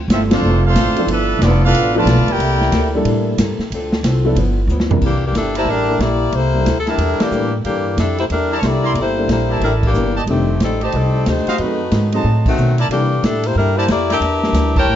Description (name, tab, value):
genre	jazz, big band swing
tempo	183 BPM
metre	4/4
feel	swing 64% on 8ths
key	C mixolydian from 5.0 s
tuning	A4 = 440 Hz
part	upright bass	bass	0.0-15.0 s	F1 to C3	-18 LUFS	equal	none
part	bright trumpet section	melody	0.1-3.0 s	B3 to A5	-18 LUFS	right 1 dB	none
part	clear trombone section	second line	0.1-2.9 s	D3 to G4	-23 LUFS	right 2 dB	none
part	picked old ladder-braced acoustic guitar	accompaniment	0.1-15.0 s	F2 to A4	-27 LUFS	left 2 dB	none
part	swinging big-band drum kit	drums	0.1-14.8 s	crash cymbal, hi-hat, kick drum, ride cymbal, snare drum, toms	-21 LUFS	equal	none
part	dark baby grand piano	accompaniment	0.3-14.9 s	C3 to Bb4	-22 LUFS	equal	none
part	warm saxophone section	melody	5.0-15.0 s	Eb3 to G5	-18 LUFS	left 3 dB	none
part	clear trumpet section	stabs	5.6-15.0 s	E4 to C6	-24 LUFS	right 2 dB	none
room	light reverb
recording	dark, warm production, nothing above 7.6 kHz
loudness	-14 LUFS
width	side -10 dB against mid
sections	0.0-5.0 A section; 5.0-15.0 B section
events	band accent 0.3, 7.2, 9.8, 12.4, 14.7; drum fill 4.7-5.0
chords	0.0 Dm7; 1.1 G13; 2.4 C13; 3.7 Dm7; 4.4 G6; 5.0 C13; 10.3 F13; 11.6 F#dim7; 12.9 C13; 14.2 Em7b5